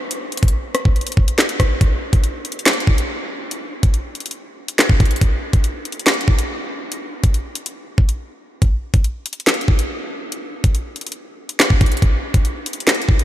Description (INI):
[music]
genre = hip hop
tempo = 141 BPM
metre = 4/4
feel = half-time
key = none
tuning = none
[part]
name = drill drum kit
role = drums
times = 0.1-13.2 s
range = handclaps, hi-hat, kick drum, rim click, snare drum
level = -16 LUFS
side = equal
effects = overdrive
[sound]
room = light reverb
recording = none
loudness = -16 LUFS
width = side -13 dB against mid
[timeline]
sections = 0.0-1.8 A section; 1.8-13.2 B section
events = break 8.2-8.6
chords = none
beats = | 0.11 0.53 0.96 1.39 | 1.81 2.24 2.66 3.09 | 3.51 3.94 4.36 4.79 | 5.21 5.64 6.07 6.49 | 6.92 7.34 7.77 8.19 | 8.62 9.04 9.47 9.89 | 10.32 10.75 11.17 11.60 | 12.02 12.45 12.87